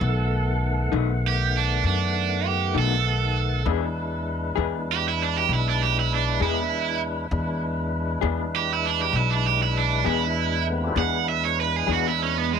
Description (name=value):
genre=slow blues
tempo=66 BPM (dotted quarters)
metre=12/8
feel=straight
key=E mixolydian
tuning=A4 = 435 Hz
part: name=cranked stack guitar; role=melody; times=0.0-12.6 s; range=G#3 to F#5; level=-25 LUFS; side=right 14 dB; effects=overdrive
part: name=tonewheel organ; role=sustained chords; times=0.0-12.6 s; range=D#3 to F#5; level=-30 LUFS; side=left 2 dB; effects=slow rotary speaker
part: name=upright bass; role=bass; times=0.0-12.6 s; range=B1 to F#2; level=-25 LUFS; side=left 1 dB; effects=none
part: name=electric guitar through a small old amp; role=accompaniment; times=0.9-12.1 s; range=B2 to G#4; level=-27 LUFS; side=left 18 dB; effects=tremolo
room=little or no reverb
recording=1960s-style stereo with parts hard left and right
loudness=-21 LUFS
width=side -7 dB against mid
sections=0.0-11.0 A section; 11.0-12.6 A section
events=overdriven electric guitar solo 0.0-12.6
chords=0.0 B7; 3.7 E7